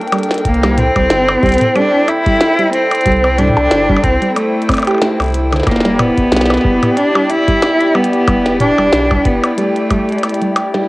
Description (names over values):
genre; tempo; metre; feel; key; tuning
IDM; 92 BPM; 4/4; swing 56% on 16ths; unclear; A4 = 439 Hz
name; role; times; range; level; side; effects
clear cello; melody; 0.0-10.5 s; A3 to E4; -14 LUFS; equal; cassette tape, tape echo
hollow soft pad; sustained chords; 0.0-10.8 s; D4 to G5; -18 LUFS; left 1 dB; chorus, cassette tape
glitchy drum kit; drums; 0.0-10.9 s; hi-hat, percussion blips, snare drum, toms; -18 LUFS; equal; cassette tape
soft round pluck; arpeggios; 0.1-10.8 s; D3 to G4; -21 LUFS; right 2 dB; chorus, cassette tape, analog delay
warm sub bass; bass; 0.4-9.4 s; E1 to C2; -20 LUFS; equal; none
electronic kick drum; drums; 0.4-10.1 s; none; -17 LUFS; equal; cassette tape
room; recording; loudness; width
moderate spring reverb, RT60 2.2 s; home recording on cassette; -10 LUFS; side -20 dB against mid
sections
0.0-10.9 A section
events
none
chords
0.4 C6; 5.7 Em7